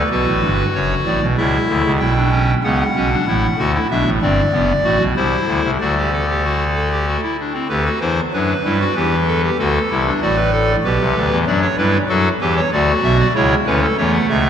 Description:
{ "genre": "classical, baroque-style 3-part fugue for pipe organ", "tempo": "95 BPM", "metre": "3/4", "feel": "straight", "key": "G major from 3.9 s", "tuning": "A4 = 441 Hz", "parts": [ { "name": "pipe organ, clarinet reed", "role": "solo", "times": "0.0-14.5 s", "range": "F#1 to G5", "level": "-14 LUFS", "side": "equal", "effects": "none" } ], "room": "wet cathedral reverb, RT60 4.7 s", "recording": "none", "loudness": "-14 LUFS", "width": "side -8 dB against mid", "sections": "0.1-7.7 A section; 7.7-14.5 B section", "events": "none", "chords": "0.1 Bm; 1.4 C#m; 2.0 G/B; 3.3 F#m/A; 3.9 Bm; 5.2 C; 5.8 D; 7.7 G/D; 9.0 A5/E; 9.6 D7; 10.9 G/B; 11.5 D/F#; 12.7 E5/D; 13.4 A/C#", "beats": "| 0.12 0.76 1.39 | 2.01 2.64 3.27 | 3.90 4.52 5.15 | 5.79 6.43 7.07 | 7.70 8.34 8.97 | 9.60 10.22 10.85 | 11.48 12.10 12.73 | 13.36 13.99" }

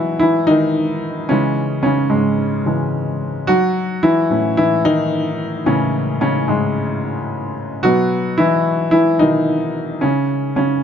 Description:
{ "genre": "pop", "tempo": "110 BPM", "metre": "4/4", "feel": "swing 56% on 16ths", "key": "B mixolydian", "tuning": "A4 = 440 Hz", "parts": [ { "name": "warm baby grand piano", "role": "solo", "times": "0.0-10.8 s", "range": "G#2 to F#4", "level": "-15 LUFS", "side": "equal", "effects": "none" } ], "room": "light reverb", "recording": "dark, warm production, nothing above 7.5 kHz", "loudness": "-15 LUFS", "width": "side -8 dB against mid", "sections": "0.0-10.8 A section", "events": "grand piano solo 0.0-10.8", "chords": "0.0 Bsus4; 1.3 C#m; 3.5 A; 7.9 Bsus4; 10.0 N.C.", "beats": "0.21 0.76 | 1.30 1.85 2.40 2.94 | 3.49 4.03 4.58 5.12 | 5.67 6.21 6.76 7.30 | 7.85 8.40 8.94 9.49 | 10.03 10.58" }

